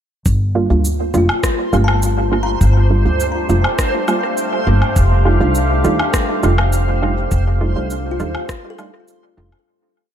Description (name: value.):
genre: ambient dub.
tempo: 102 BPM.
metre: 4/4.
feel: straight.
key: G minor.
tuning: A4 = 440 Hz.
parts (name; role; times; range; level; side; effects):
deep dark ambient pad; sustained chords; 2.1-9.7 s; A3 to F5; -22 LUFS; equal; chorus, built-in reverb.
upright bass; bass; 0.3-9.5 s; F1 to Eb2; -15 LUFS; equal; none.
electronic kick drum; drums; 0.3-8.6 s; none; -18 LUFS; equal; none.
electronic shaker, woodblock and rim click; drums; 0.3-9.6 s; none; -23 LUFS; equal; dub echo.
backwards swelling texture; texture; 1.5-9.7 s; C5; -27 LUFS; right 2 dB; built-in reverb, ensemble chorus.
filtered dub chord stab; stabs; 0.6-9.5 s; G3 to F4; -21 LUFS; right 4 dB; chorus, dub echo.
kalimba; arpeggios; 1.2-4.3, 8.1-10.1 s; A3 to Bb5; -25 LUFS; left 4 dB; ping-pong delay.
room: light reverb.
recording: none.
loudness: -13 LUFS.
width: side -9 dB against mid.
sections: 0.3-9.7 groove.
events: fade-in on ambient pad 0.3-9.7; fade-out 6.5-9.7.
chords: 0.3 Gm7; 5.0 F13.